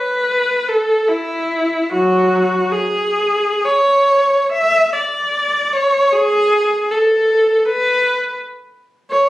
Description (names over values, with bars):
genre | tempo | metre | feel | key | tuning
classical, free, expressive piece for unaccompanied viola | free time | none | none | A major | A4 = 440 Hz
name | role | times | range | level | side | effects
rich viola | solo | 0.0-9.3 s | F#3 to E5 | -13 LUFS | equal | none
room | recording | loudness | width
light reverb | recorded on a phone in the room, studio reverb | -13 LUFS | side -16 dB against mid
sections
0.0-9.3 A section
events
none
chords
none